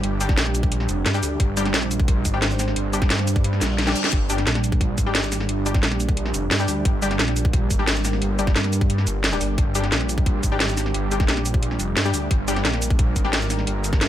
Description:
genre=dark technical drum and bass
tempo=176 BPM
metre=4/4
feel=straight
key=G phrygian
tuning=A4 = 440 Hz
part: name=dark analog pad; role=sustained chords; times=0.0-14.1 s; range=G3 to C5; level=-28 LUFS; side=right 3 dB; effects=chorus, sidechain pumping
part: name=wide detuned saw bass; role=bass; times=0.0-14.1 s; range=F1 to G2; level=-24 LUFS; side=equal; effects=chorus, overdrive
part: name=drum and bass drum kit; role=drums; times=0.0-14.1 s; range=hi-hat, shaker, snare drum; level=-24 LUFS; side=equal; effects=none
part: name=orchestra-hit-like synth stab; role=stabs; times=0.2-13.3 s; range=G3 to G4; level=-29 LUFS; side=left 4 dB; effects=built-in reverb, cassette tape, ping-pong delay
part: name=electronic kick drum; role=drums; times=0.3-14.0 s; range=none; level=-20 LUFS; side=equal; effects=none
part: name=reverse cymbal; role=sound effects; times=3.6-4.1 s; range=none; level=-30 LUFS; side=left 5 dB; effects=none
room=little or no reverb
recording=none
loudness=-19 LUFS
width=side -12 dB against mid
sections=0.0-14.1 A section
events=reverse cymbal 3.6-4.1; drum fill 3.6-4.1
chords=0.0 G5

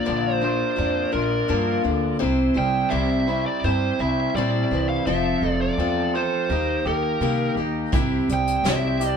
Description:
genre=folk rock and heartland rock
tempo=84 BPM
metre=4/4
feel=straight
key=C mixolydian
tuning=A4 = 439 Hz
part: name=biting lead guitar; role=melody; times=0.0-9.2 s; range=Bb4 to G5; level=-26 LUFS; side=right 2 dB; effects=overdrive
part: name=picked steel-string acoustic guitar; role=accompaniment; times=0.0-9.2 s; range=Bb2 to C5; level=-25 LUFS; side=left 4 dB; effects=none
part: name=bright tonewheel organ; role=sustained chords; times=0.0-9.2 s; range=Bb3 to D5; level=-34 LUFS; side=right 1 dB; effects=slow rotary speaker
part: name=electric guitar through a small old amp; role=riff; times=0.0-9.2 s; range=F2 to G4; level=-26 LUFS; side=right 2 dB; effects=none
part: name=upright bass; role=bass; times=0.1-9.2 s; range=F1 to C3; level=-27 LUFS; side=right 1 dB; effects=none
part: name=soft brush drum kit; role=drums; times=7.9-9.2 s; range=hi-hat, kick drum, snare drum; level=-24 LUFS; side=equal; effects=none
room=moderate small room reverb, RT60 0.5 s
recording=band playing live in one room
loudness=-20 LUFS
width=side -7 dB against mid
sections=0.0-9.2 A section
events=none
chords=0.0 Bb; 2.2 C; 5.1 F; 6.5 Eb; 7.9 C

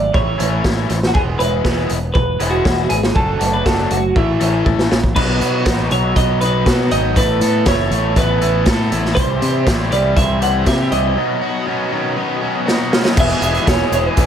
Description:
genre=indie rock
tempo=120 BPM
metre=4/4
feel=straight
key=unclear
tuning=A4 = 443 Hz
part: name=twelve-string electric guitar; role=melody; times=0.0-14.3 s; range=E4 to F#5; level=-20 LUFS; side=right 2 dB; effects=dub echo
part: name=overdriven electric guitar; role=riff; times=0.0-14.3 s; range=A2 to A4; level=-24 LUFS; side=right 7 dB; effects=lush chorus, dub echo
part: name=growling picked electric bass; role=bass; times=0.0-14.3 s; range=E1 to C3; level=-19 LUFS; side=equal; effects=overdrive
part: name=raw garage drum kit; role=drums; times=0.1-14.3 s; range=crash cymbal, hi-hat, kick drum, snare drum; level=-18 LUFS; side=equal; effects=none
part: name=crunchy overdriven guitar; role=riff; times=0.4-14.3 s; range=E2 to A4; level=-22 LUFS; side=left 10 dB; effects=none
part: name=combo organ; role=sustained chords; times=9.1-14.3 s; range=F#4 to C6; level=-32 LUFS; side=right 1 dB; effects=none
part: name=tube shaker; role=percussion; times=13.2-14.3 s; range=none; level=-35 LUFS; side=right 18 dB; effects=none
room=light reverb, studio ambience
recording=echo-heavy mix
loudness=-14 LUFS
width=side -9 dB against mid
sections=0.0-5.2 A section; 5.2-13.2 B section; 13.2-14.3 C section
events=drum fill 4.7-5.2, 12.7-13.2; break 11.2-13.2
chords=0.1 A; 1.1 E; 3.2 D/F#; 4.2 A; 5.2 B; 7.2 Asus2; 9.2 C; 11.2 Badd9; 13.2 E

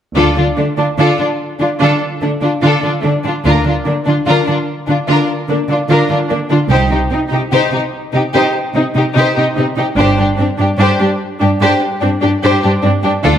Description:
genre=cinematic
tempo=73 BPM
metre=4/4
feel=straight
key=D phrygian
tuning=A4 = 440 Hz
part: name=rich studio violin section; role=melody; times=0.2-13.4 s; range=D4 to C5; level=-19 LUFS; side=left 3 dB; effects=none
part: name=rich symphonic violin section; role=second line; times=0.2-13.4 s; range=A3 to G4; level=-18 LUFS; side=left 1 dB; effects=none
part: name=rich symphonic viola section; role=accompaniment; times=0.2-13.4 s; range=D4 to Eb4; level=-18 LUFS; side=equal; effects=none
part: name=clear symphonic double bass section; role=bass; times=0.2-13.4 s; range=G1 to D2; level=-18 LUFS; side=right 2 dB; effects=none
part: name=rich symphonic cello section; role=bass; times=0.2-13.3 s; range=G2 to D3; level=-16 LUFS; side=right 2 dB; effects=none
room=wet scoring stage reverb, RT60 1.6 s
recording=none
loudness=-12 LUFS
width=side -9 dB against mid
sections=0.2-13.4 A section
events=build-up 0.2-13.4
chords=0.2 Dm; 6.7 Cm; 10.0 Gsus4

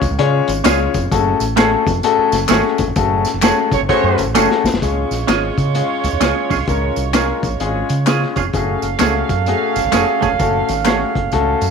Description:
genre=uptempo 1960s-style soul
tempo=129 BPM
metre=4/4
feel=swing 63% on 8ths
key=Db major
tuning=A4 = 442 Hz
part: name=warm concert grand piano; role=accompaniment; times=0.0-11.6 s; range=Ab3 to Db5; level=-18 LUFS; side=left 8 dB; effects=none
part: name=fingered electric bass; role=bass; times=0.0-11.7 s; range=F1 to Db3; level=-21 LUFS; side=right 2 dB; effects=none
part: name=vintage drum kit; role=drums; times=0.0-11.7 s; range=hi-hat, kick drum, snare drum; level=-21 LUFS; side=left 3 dB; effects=none
part: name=tambourine and handclaps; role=percussion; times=0.0-11.7 s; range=none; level=-26 LUFS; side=left 2 dB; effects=none
part: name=semi-hollow electric guitar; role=stabs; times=0.6-11.0 s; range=A3 to Ab4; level=-20 LUFS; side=right 10 dB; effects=none
part: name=clear horn section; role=second line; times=3.7-11.7 s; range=Ab3 to F5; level=-21 LUFS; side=right 12 dB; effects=none
room=moderate plate reverb, RT60 1.3 s, studio ambience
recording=1960s-style stereo with parts hard left and right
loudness=-14 LUFS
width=side -6 dB against mid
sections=0.0-4.8 A section; 4.8-11.7 B section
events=band accent 3.0-4.8; drum fill 4.4-4.8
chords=0.0 Db; 1.1 Gbmadd9; 4.8 Db; 8.5 Gbmadd9

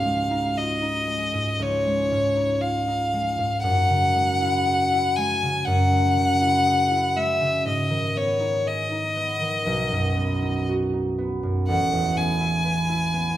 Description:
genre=classical, impressionist duo for violin and harp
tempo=60 BPM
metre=4/4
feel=rubato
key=B major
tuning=A4 = 444 Hz
part: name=clear violin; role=melody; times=0.0-13.4 s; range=C#5 to G#5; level=-22 LUFS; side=left 2 dB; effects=none
part: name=concert harp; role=accompaniment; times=0.0-13.4 s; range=A1 to B4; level=-24 LUFS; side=right 1 dB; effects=none
room=moderate recital hall reverb, RT60 1.6 s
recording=minimal, uncompressed stereo recording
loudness=-20 LUFS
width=side -13 dB against mid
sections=0.0-13.4 A section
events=none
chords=0.0 C#add9; 3.6 F#sus2; 7.7 G#m; 9.7 B; 11.7 Asus2

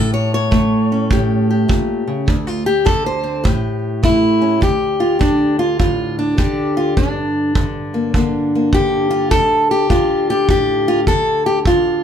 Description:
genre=acoustic country blues, solo or duo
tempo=102 BPM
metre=4/4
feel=swing 65% on 8ths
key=D minor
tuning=A4 = 440 Hz
part: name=fingerpicked steel-string acoustic guitar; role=melody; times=0.0-12.0 s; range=D2 to C#5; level=-15 LUFS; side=equal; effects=plate reverb
part: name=kick drum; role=drums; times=0.5-11.8 s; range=none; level=-18 LUFS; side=right 1 dB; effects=none
room=moderate studio ambience, RT60 0.5 s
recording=heard from further back in the room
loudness=-14 LUFS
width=side -8 dB against mid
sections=0.0-4.6 A section; 4.6-12.0 B section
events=steel-string acoustic guitar solo 0.0-4.6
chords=0.0 A7; 2.3 D7(no3); 3.4 A7(no3); 4.6 D5; 7.0 Gm; 9.3 Dm

